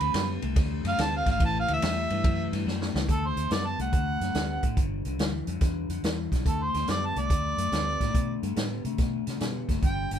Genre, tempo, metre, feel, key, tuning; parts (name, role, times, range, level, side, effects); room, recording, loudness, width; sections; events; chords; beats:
electric blues shuffle; 142 BPM; 4/4; swing 67% on 8ths; D mixolydian; A4 = 440 Hz
warm harmonica; melody; 0.0-10.2 s; A4 to A5; -29 LUFS; right 3 dB; overdrive
electric guitar through a small old amp; riff; 0.0-10.2 s; G2 to B3; -33 LUFS; left 5 dB; spring reverb
vintage muted fingered electric bass; bass; 0.0-10.2 s; F#1 to C3; -32 LUFS; equal
vintage drum kit; drums; 0.0-10.2 s; hi-hat, kick drum, ride cymbal, snare drum; -28 LUFS; equal
light reverb; band playing live in one room; -25 LUFS; side -9 dB against mid
0.0-3.1 A section; 3.1-10.2 B section
harmonica solo 0.0-3.1; drum fill 2.7-3.1
0.0 D; 1.4 A7(no3); 3.1 D; 4.8 G7(no3); 6.5 D
0.14 0.56 0.99 | 1.41 1.83 2.25 2.67 | 3.09 3.51 3.93 4.35 | 4.77 5.20 5.62 6.04 | 6.46 6.88 7.30 7.72 | 8.14 8.56 8.99 9.41 | 9.83